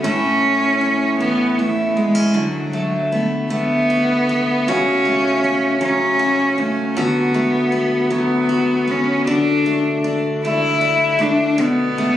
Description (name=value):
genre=pop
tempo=52 BPM (dotted quarters)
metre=6/8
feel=straight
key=unclear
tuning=A4 = 440 Hz
part: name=warm cello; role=melody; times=0.0-12.2 s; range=F#3 to E4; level=-17 LUFS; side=left 1 dB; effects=digital delay
part: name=picked steel-string acoustic guitar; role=accompaniment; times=0.0-12.2 s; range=A2 to F#4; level=-20 LUFS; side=equal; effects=none
room=moderate plate reverb, RT60 3.4 s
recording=recorded on a phone in the room, club reverb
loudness=-15 LUFS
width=side -11 dB against mid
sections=0.0-9.3 A section; 9.3-12.2 B section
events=none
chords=0.0 A; 2.4 D6; 4.7 F#m/C#; 7.0 D6; 9.3 D5; 11.6 Bm7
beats=| 0.05 1.20 | 2.36 3.52 | 4.67 5.83 | 6.98 8.13 | 9.29 10.44 | 11.59